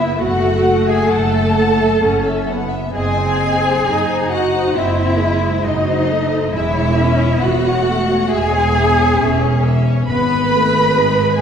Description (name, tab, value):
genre	classical, slow romantic movement for string orchestra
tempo	67 BPM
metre	4/4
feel	rubato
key	C# minor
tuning	A4 = 440 Hz
part	dark chamber violin section	melody	0.0-11.4 s	B4 to F#5	-25 LUFS	left 3 dB	none
part	rich chamber violin section	second line	0.0-11.4 s	D#5 to B5	-23 LUFS	left 2 dB	none
part	rich chamber viola section	accompaniment	0.0-11.4 s	F#3 to D#4	-21 LUFS	left 2 dB	none
part	clear chamber double bass section	bass	0.0-11.4 s	E1 to G#1	-19 LUFS	right 2 dB	none
part	warm chamber cello section	bass	0.0-11.4 s	D#4 to B4	-17 LUFS	right 1 dB	none
room	wet scoring stage reverb, RT60 1.6 s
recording	heard from further back in the room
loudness	-13 LUFS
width	side -7 dB against mid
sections	0.0-11.4 A section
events	none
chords	0.0 F#m7; 2.9 G#7/F#; 6.5 C#m/E; 10.1 G#m